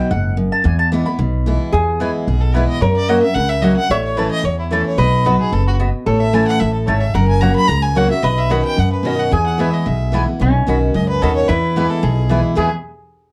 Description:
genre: bluegrass.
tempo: 221 BPM.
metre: 4/4.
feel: straight.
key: E major.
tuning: A4 = 444 Hz.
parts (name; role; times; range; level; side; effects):
picked steel-string acoustic guitar; accompaniment; 0.0-12.7 s; E2 to F#4; -21 LUFS; equal; none.
mandolin; stabs; 0.0-12.7 s; A3 to B5; -25 LUFS; equal; none.
upright bass; bass; 0.1-12.7 s; F#1 to F#2; -20 LUFS; equal; none.
lap resonator guitar; second line; 1.7-12.7 s; C#4 to C#5; -24 LUFS; equal; none.
clear fiddle; melody; 2.3-12.7 s; E4 to B5; -24 LUFS; equal; none.
room: moderate small room reverb, RT60 0.5 s.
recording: dark, warm production.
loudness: -16 LUFS.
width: mono.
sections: 0.0-1.7 A section; 1.7-10.4 B section; 10.4-12.6 C section.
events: mandolin solo 0.0-1.7.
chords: 0.0 B; 0.7 E; 2.8 F#; 3.9 A; 5.0 B; 6.1 A; 7.2 F#; 8.2 Badd9; 9.3 E; 10.4 Badd9; 11.5 E.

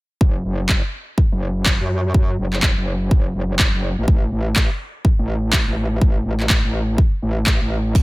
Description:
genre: bass house.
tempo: 124 BPM.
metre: 4/4.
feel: swing 60% on 16ths.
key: unclear.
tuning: A4 = 441 Hz.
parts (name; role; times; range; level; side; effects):
metallic wobble bass; bass; 0.2-8.0 s; F#1 to F#2; -21 LUFS; equal; chorus, overdrive, sidechain pumping.
electronic kick drum; drums; 0.2-8.0 s; none; -16 LUFS; equal; none.
electronic handclaps; drums; 0.7-7.6 s; none; -21 LUFS; equal; overdrive.
ride cymbal; drums; 8.0 s; none; -28 LUFS; right 4 dB; high-pass filter on cymbals, high-pass filter on room.
room: little or no reverb.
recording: none.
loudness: -16 LUFS.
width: side -21 dB against mid.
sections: 0.2-8.0 A section.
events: none.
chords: none.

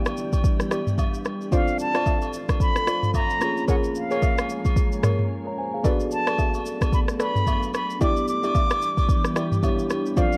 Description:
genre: amapiano.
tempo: 111 BPM.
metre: 4/4.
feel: swing 58% on 16ths.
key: unclear.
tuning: A4 = 440 Hz.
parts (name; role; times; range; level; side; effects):
mellow tine electric piano; accompaniment; 0.0-10.4 s; F3 to A#5; -32 LUFS; equal; phaser.
glassy FM pad; sustained chords; 0.0-10.4 s; E3 to A4; -35 LUFS; equal; ensemble chorus, built-in reverb, phaser, sidechain pumping.
afro-pop drum kit; drums; 0.1-10.4 s; kick drum, rim click, shaker, toms; -25 LUFS; equal; none.
agogo bells and woodblock; percussion; 0.1-10.3 s; none; -39 LUFS; equal; none.
soft round pluck; stabs; 0.7-10.3 s; E4 to D5; -33 LUFS; equal; chorus, tape echo.
bright concert flute; melody; 1.5-10.4 s; F5 to D6; -30 LUFS; equal; tape echo.
room: little or no reverb.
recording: worn, warbling old tape, cassette tape, warbly pitch drift.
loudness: -23 LUFS.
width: mono.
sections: 0.0-10.4 A section.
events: break 5.3-5.8.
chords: 0.0 Em7; 1.5 Dm7; 3.4 A#m7; 5.8 Bm7; 8.0 Em7.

